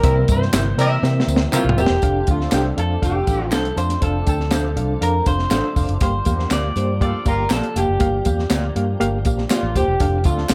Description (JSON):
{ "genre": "uptempo 1960s-style soul", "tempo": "120 BPM", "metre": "4/4", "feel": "straight", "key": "F major", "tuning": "A4 = 440 Hz", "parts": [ { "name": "electric guitar through a small old amp", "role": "melody", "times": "0.0-10.5 s", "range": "F4 to E5", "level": "-26 LUFS", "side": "equal", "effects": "none" }, { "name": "mellow horn section", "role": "second line", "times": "0.0-10.5 s", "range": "D3 to C5", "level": "-32 LUFS", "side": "equal", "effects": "slapback echo" }, { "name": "reed electric piano", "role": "accompaniment", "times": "0.0-10.5 s", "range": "G2 to G5", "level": "-27 LUFS", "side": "equal", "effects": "fast tremolo" }, { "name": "tonewheel organ", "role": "sustained chords", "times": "0.0-10.5 s", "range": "E3 to D4", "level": "-34 LUFS", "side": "equal", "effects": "none" }, { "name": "vintage muted fingered electric bass", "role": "bass", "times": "0.0-10.5 s", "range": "Eb1 to C3", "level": "-24 LUFS", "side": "equal", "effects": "none" }, { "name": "compact cocktail drum kit", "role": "drums", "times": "0.0-10.5 s", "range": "hi-hat, kick drum, snare drum, toms", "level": "-24 LUFS", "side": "equal", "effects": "none" }, { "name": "tambourine and handclaps", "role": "percussion", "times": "0.0-10.5 s", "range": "none", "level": "-34 LUFS", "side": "equal", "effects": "none" }, { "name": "electric guitar through a small old amp", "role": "stabs", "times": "0.5-10.5 s", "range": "D4 to D5", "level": "-33 LUFS", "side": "equal", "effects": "slapback echo" } ], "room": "light reverb", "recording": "none", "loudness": "-19 LUFS", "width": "mono", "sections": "0.0-2.0 A section; 2.0-10.5 B section", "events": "drum fill 1.0-2.0", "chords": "0.0 C7; 2.0 F6; 6.0 Gm7; 10.0 F6" }